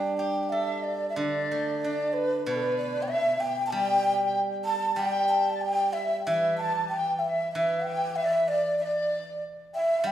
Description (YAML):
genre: chinese traditional, Chinese chamber ensemble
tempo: 94 BPM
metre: 2/4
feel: rubato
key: G gong mode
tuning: A4 = 443 Hz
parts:
  - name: breathy mellow low xiao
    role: melody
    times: 0.0-10.1 s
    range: B4 to A5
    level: -27 LUFS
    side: right 1 dB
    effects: none
  - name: steel-string zither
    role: accompaniment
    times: 0.0-10.1 s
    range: B2 to A4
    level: -32 LUFS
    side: right 2 dB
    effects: none
  - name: mellow large dizi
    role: second line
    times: 0.2-10.1 s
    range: A4 to A5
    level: -29 LUFS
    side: left 2 dB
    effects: none
room: moderate recital hall reverb, RT60 1.6 s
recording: studio reverb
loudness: -24 LUFS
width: side -11 dB against mid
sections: 0.0-1.2 A section; 1.2-10.1 B section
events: none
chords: none